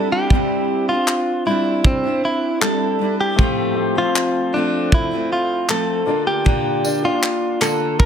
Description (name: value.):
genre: acoustic pop.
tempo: 78 BPM.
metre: 4/4.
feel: straight.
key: C mixolydian.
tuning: A4 = 443 Hz.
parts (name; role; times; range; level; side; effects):
direct-recorded clean electric guitar; melody; 0.0-8.1 s; C4 to Bb4; -20 LUFS; right 1 dB; spring reverb.
fingerpicked steel-string acoustic guitar; accompaniment; 0.0-8.1 s; A2 to F4; -22 LUFS; equal; double-tracked left and right.
modern studio drum kit; drums; 0.3-8.1 s; handclaps, kick drum, tambourine; -17 LUFS; equal; none.
warm concert grand piano; accompaniment; 3.4-8.1 s; F3 to D5; -26 LUFS; left 7 dB; none.
room: moderate studio reverb, RT60 0.8 s.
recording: none.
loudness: -16 LUFS.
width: side -8 dB against mid.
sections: 0.0-8.1 A section.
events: none.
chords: 0.0 Cadd9/G; 3.4 F/A; 6.1 Bb.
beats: | 0.31 1.08 1.85 2.62 | 3.39 4.16 4.92 5.70 | 6.46 7.23 8.00.